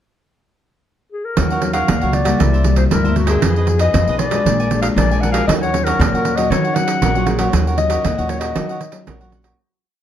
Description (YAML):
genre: samba and choro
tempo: 117 BPM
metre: 4/4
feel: straight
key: Eb minor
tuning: A4 = 440 Hz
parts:
  - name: warm clarinet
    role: melody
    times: 1.1-9.1 s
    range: Gb4 to Gb5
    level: -21 LUFS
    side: left 4 dB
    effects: none
  - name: cavaquinho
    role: accompaniment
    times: 1.4-9.6 s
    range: D4 to Ab5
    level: -25 LUFS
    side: right 3 dB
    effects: none
  - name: nylon-string guitar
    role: accompaniment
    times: 1.4-9.6 s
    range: G2 to Ab4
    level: -21 LUFS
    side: left 3 dB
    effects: none
  - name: upright bass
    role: bass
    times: 1.4-9.5 s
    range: Bb1 to Eb3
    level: -19 LUFS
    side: equal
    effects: none
  - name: pandeiro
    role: percussion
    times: 1.4-9.6 s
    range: none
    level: -20 LUFS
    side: right 6 dB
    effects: none
room: light reverb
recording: dark, warm production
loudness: -14 LUFS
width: side -10 dB against mid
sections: 0.0-1.4 pickup bar; 1.4-9.6 A section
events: fade-out 7.5-9.6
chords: 0.0 N.C.; 1.4 Ebm9; 2.4 C7; 3.4 Fm7b5; 4.5 Bb7; 5.5 Ebm9